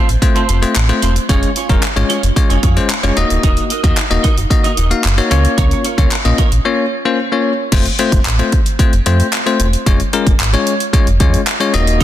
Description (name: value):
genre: dance-pop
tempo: 112 BPM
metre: 4/4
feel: straight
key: unclear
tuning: A4 = 440 Hz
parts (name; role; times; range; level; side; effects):
- bell-like tine electric piano; accompaniment; 0.0-12.0 s; Ab3 to F5; -16 LUFS; left 4 dB; sidechain pumping
- clean electric guitar; riff; 0.0-6.6, 12.0 s; C4 to Eb5; -22 LUFS; right 6 dB; ensemble chorus
- sub bass with octave; bass; 0.1-12.0 s; D1 to F2; -15 LUFS; equal; sidechain pumping
- pop drum kit; drums; 0.1-12.0 s; crash cymbal, handclaps, hi-hat, kick drum; -15 LUFS; equal; none
room: light reverb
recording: dense, heavily limited modern master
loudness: -11 LUFS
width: side -12 dB against mid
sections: 0.0-7.7 A section; 7.7-12.0 B section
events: break 6.7-7.7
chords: 0.0 F; 1.3 Db/F; 3.2 Ebm; 5.3 Bbm; 7.7 F; 9.9 Db/F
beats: 0.22 0.76 | 1.29 1.83 2.36 2.90 | 3.44 3.97 4.51 5.04 | 5.58 6.11 6.65 7.18 | 7.72 8.26 8.79 9.33 | 9.86 10.40 10.94 11.47 | 12.01